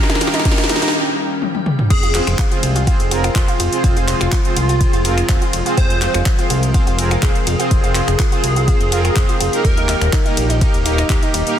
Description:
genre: progressive house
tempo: 124 BPM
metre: 4/4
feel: straight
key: F minor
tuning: A4 = 441 Hz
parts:
  - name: evolving wavetable pad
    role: sustained chords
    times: 0.1-11.6 s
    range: Bb2 to G5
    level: -26 LUFS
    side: left 2 dB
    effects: chorus, built-in reverb, sidechain pumping
  - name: soft supersaw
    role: stabs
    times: 0.0-11.6 s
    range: Bb3 to C5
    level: -22 LUFS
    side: right 2 dB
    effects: lush chorus, sidechain pumping, ping-pong delay
  - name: deep house drum kit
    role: drums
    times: 0.0-11.6 s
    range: crash cymbal, finger snaps, handclaps, hi-hat, ride cymbal, snare drum, toms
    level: -22 LUFS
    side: left 1 dB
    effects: overdrive, sidechain pumping on hats, sidechain pumping on toms, sidechain pumping on cymbals
  - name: riser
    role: sound effects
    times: 0.0-0.9 s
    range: none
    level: -25 LUFS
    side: right 1 dB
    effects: none
  - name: analog pluck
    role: arpeggios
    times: 0.1-11.4 s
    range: Eb4 to F4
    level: -26 LUFS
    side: right 2 dB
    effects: chorus, sidechain pumping, ping-pong delay
  - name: electronic kick drum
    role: drums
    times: 0.5-11.2 s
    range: none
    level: -16 LUFS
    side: equal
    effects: overdrive
  - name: plucky unison lead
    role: melody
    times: 1.9-11.6 s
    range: F4 to C5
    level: -23 LUFS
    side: equal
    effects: phaser, sidechain pumping, ping-pong delay
  - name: fat analog bass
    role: bass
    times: 1.9-11.4 s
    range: Eb1 to C2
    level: -19 LUFS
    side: equal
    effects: sidechain pumping
room: light reverb, digital ambience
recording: dense, heavily limited modern master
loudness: -13 LUFS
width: side -10 dB against mid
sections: 0.0-1.9 A section; 1.9-11.6 B section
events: build-up 0.0-1.9; drum fill 0.0-0.9, 1.4-1.9; riser 0.0-0.9; break 0.9-1.9; drop 1.9-11.6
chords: 0.0 Eb; 1.9 Fm; 9.6 Eb

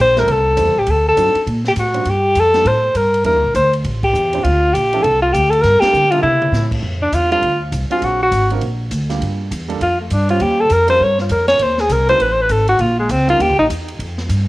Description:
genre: jazz, small-group swing and bop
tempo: 201 BPM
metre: 4/4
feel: swing 62% on 8ths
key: unclear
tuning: A4 = 440 Hz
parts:
  - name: breathy alto saxophone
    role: melody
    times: 0.0-13.7 s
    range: Ab3 to Db5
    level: -14 LUFS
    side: left 1 dB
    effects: cassette tape
  - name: upright bass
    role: bass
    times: 0.0-14.5 s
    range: Ab1 to D3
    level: -19 LUFS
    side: equal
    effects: none
  - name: dark baby grand piano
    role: accompaniment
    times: 0.2-13.4 s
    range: F3 to Db5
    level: -26 LUFS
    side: right 7 dB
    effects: cassette tape
  - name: swinging big-band drum kit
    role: drums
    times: 0.2-14.4 s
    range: crash cymbal, hi-hat, kick drum, ride cymbal, snare drum, toms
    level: -29 LUFS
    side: equal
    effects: cassette tape
room: light reverb, studio ambience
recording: home recording on cassette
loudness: -13 LUFS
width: side -18 dB against mid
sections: 0.0-6.8 A section; 6.8-14.5 B section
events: band accent 4.0, 5.8; drum fill 6.2; alto saxophone solo 6.8-14.5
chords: 0.0 Am7; 0.9 D7b9; 2.1 Gm9; 3.2 Em7b5; 3.8 A5; 4.4 Dm7; 5.6 Gm7; 6.2 C6; 6.8 F5; 8.0 D7alt; 9.2 Gm7; 10.4 Eb13; 11.6 Cm7b5; 12.2 Ab5; 12.8 Bbm; 13.4 Eb5

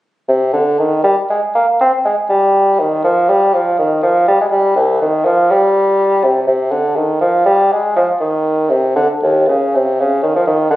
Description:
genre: classical, baroque-style fantasia for unaccompanied bassoon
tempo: 81 BPM (dotted quarters)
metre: 12/8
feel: rubato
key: C minor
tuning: A4 = 441 Hz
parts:
  - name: mellow bassoon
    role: solo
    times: 0.3-10.8 s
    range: C2 to C4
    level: -11 LUFS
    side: equal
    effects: none
room: moderate studio reverb, RT60 0.7 s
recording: recorded on a phone in the room, studio reverb, compression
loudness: -11 LUFS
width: side -15 dB against mid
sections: 0.3-10.8 A section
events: none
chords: none

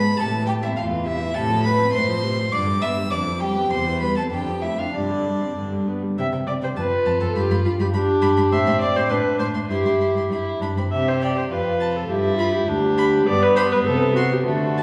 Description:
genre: quick classical-period movement for string quartet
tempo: 102 BPM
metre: 2/4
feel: rubato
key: unclear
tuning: A4 = 440 Hz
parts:
  - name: rich violin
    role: melody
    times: 0.0-14.8 s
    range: D5 to E6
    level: -30 LUFS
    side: equal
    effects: none
  - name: warm viola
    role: accompaniment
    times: 0.0-14.8 s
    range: C3 to E5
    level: -25 LUFS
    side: equal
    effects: none
  - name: rich cello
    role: bass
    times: 0.0-14.8 s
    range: D2 to D3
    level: -27 LUFS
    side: equal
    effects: none
  - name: warm violin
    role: second line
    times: 0.2-14.8 s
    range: A3 to E5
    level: -28 LUFS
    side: equal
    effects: none
room: wet recital hall reverb, RT60 1.8 s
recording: heard from further back in the room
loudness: -21 LUFS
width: mono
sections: 0.0-6.2 A section; 6.2-14.8 B section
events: none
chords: 0.2 Am; 1.3 F/A; 2.5 G; 3.1 G7/F; 3.7 C/E; 4.3 Dm/F; 4.9 Gsus4; 5.6 G; 6.2 C5; 6.8 F; 7.4 G7; 8.5 Am; 9.7 C/G; 10.9 C5; 11.5 F; 12.1 G; 13.9 Am13/C

